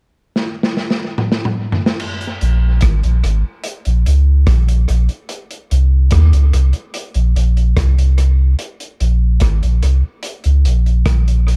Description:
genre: roots reggae.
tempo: 73 BPM.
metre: 4/4.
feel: straight.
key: Bb minor.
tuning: A4 = 441 Hz.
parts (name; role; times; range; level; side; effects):
vintage drum kit; drums; 0.4-11.6 s; crash cymbal, hi-hat, kick drum, rim click, snare drum, toms; -22 LUFS; equal; tape echo.
warm sub bass; bass; 2.4-11.6 s; Ab1 to Eb2; -14 LUFS; equal; none.
room: little or no reverb.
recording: echo-heavy mix.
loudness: -15 LUFS.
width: mono.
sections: 0.0-2.0 A section; 2.0-8.6 B section; 8.6-11.6 C section.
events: drum fill 0.4-2.0.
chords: none.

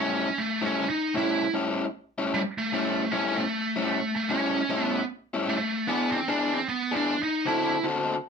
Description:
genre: blues.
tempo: 152 BPM.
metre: 4/4.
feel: swing 64% on 8ths.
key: A mixolydian.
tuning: A4 = 440 Hz.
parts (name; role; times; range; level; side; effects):
biting lead guitar; melody; 0.0-7.8 s; G3 to E4; -26 LUFS; right 2 dB; overdrive.
crunchy overdriven guitar; riff; 0.0-8.1 s; A2 to A4; -27 LUFS; left 3 dB; none.
room: moderate studio ambience, RT60 0.5 s.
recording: band playing live in one room.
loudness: -24 LUFS.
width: side -6 dB against mid.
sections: 0.0-8.3 A section.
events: none.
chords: 0.0 A7; 5.9 E7; 7.5 D7.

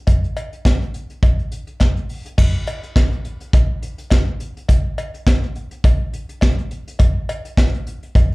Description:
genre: funk.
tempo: 104 BPM.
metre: 4/4.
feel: swing 56% on 16ths.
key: none.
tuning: none.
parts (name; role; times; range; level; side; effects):
vintage brush drum kit; drums; 0.1-8.3 s; crash cymbal, hi-hat, kick drum, snare drum; -15 LUFS; equal; none.
cowbell; percussion; 0.1-8.3 s; none; -31 LUFS; left 1 dB; slapback echo.
room: little or no reverb.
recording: live gig heard through the venue's PA, club reverb.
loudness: -16 LUFS.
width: side -24 dB against mid.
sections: 0.0-2.4 A section; 2.4-8.3 B section.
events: none.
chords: none.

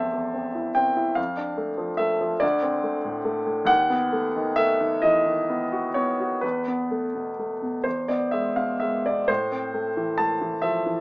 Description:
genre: classical, romantic nocturne for solo piano.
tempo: 41-50 BPM (dotted quarters).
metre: 12/8.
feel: rubato.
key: unclear.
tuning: A4 = 444 Hz.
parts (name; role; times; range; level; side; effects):
warm grand piano; solo; 0.0-11.0 s; A1 to A5; -22 LUFS; equal; none.
room: light reverb.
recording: small speaker sound.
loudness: -22 LUFS.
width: side -24 dB against mid.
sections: 0.0-11.0 A section.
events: none.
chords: 0.0 Am; 1.2 Dm/F; 2.4 D5; 3.7 B7/D#; 6.4 Esus4; 7.9 E; 9.3 Am.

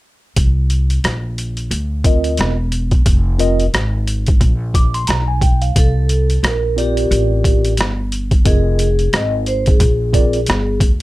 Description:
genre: hip hop, jazz-hop.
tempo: 89 BPM.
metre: 4/4.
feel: swing 58% on 16ths.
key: unclear.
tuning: A4 = 440 Hz.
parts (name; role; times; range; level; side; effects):
upright bass; bass; 0.4-11.0 s; E1 to D2; -17 LUFS; equal; none.
boom bap sampler-style drum kit; drums; 0.4-11.0 s; hi-hat, kick drum, rim click; -15 LUFS; equal; overdrive.
mellow tine electric piano; accompaniment; 2.0-10.4 s; C4 to D6; -20 LUFS; right 1 dB; medium stereo tremolo, low-pass filter, plate reverb.
vibraphone with soft mallets; melody; 5.8-10.8 s; G4 to Eb5; -20 LUFS; left 1 dB; none.
room: little or no reverb.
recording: none.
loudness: -13 LUFS.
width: side -18 dB against mid.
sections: 0.4-5.8 A section; 5.8-11.0 B section.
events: none.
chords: 0.4 Cm9; 3.1 Fm7; 4.4 Bb6b9; 5.8 Csus2; 8.5 Fm7; 9.8 Bb13.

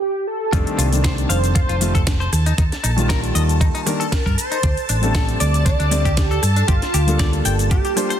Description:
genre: nu-disco, nu disco.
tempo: 117 BPM.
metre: 4/4.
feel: swing 54% on 16ths.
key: unclear.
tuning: A4 = 440 Hz.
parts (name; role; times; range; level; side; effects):
wide unison lead; melody; 0.0-8.2 s; F4 to D5; -24 LUFS; right 2 dB; analog chorus, tape echo.
dark concert grand piano; accompaniment; 0.5-8.1 s; Eb3 to D5; -24 LUFS; left 2 dB; sidechain pumping.
string machine, full ensemble; sustained chords; 0.5-8.2 s; A5; -30 LUFS; equal; ensemble chorus, sidechain pumping.
direct-recorded clean electric guitar; riff; 0.5-8.2 s; D4 to G5; -29 LUFS; left 5 dB; lush chorus.
hollow-body short-scale fingered electric bass; bass; 0.5-7.8 s; F1 to G2; -19 LUFS; equal; tube saturation.
electronic kick drum; drums; 0.5-7.8 s; none; -19 LUFS; equal; none.
house drum kit; drums; 0.5-8.2 s; hi-hat, rim click, shaker, snare drum; -25 LUFS; equal; none.
room: light reverb.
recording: dense, heavily limited modern master.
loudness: -16 LUFS.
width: side -10 dB against mid.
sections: 0.5-8.2 A section.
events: break 0.0-0.5; drop 0.5-8.2.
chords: 0.0 Gsus2; 0.5 F13; 2.3 Ebadd9; 4.6 D7sus4; 6.7 Gm9.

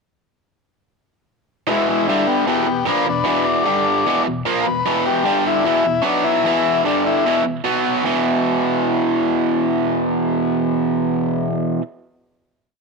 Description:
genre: rock.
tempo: 152 BPM.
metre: 4/4.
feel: straight.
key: unclear.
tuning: A4 = 442 Hz.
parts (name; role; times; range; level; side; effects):
combo organ; melody; 1.7-7.4 s; G3 to D5; -19 LUFS; left 6 dB; none.
overdriven electric guitar; riff; 1.7-11.8 s; E2 to B3; -17 LUFS; right 2 dB; none.
room: wet spring reverb, RT60 1.2 s.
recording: none.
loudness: -16 LUFS.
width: side -3 dB against mid.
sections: 1.7-8.0 riff; 8.0-11.2 final chord.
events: none.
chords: 1.7 E; 2.1 G5; 2.5 E5; 3.7 G5; 4.1 E5; 5.2 G5; 5.6 E5; 6.0 B5; 6.4 E5; 6.8 G5; 7.2 E5; 7.6 B5; 8.0 E5.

